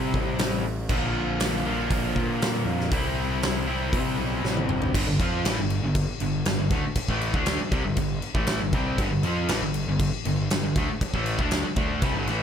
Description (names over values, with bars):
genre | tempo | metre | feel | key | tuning
classic rock | 119 BPM | 4/4 | straight | unclear | A4 = 440 Hz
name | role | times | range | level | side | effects
cranked stack guitar | riff | 0.0-12.4 s | G2 to F4 | -26 LUFS | equal | overdrive
fuzz picked electric bass | bass | 0.0-12.4 s | G1 to C3 | -30 LUFS | equal | overdrive
big rock drum kit | drums | 0.1-12.4 s | crash cymbal, hi-hat, kick drum, snare drum, toms | -27 LUFS | equal | none
room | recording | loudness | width
studio reverb | none | -23 LUFS | side -8 dB against mid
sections
0.0-4.9 A section; 4.9-12.4 B section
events
drum fill 4.4-4.9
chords
0.0 C; 0.9 Bb; 2.9 C; 4.9 G5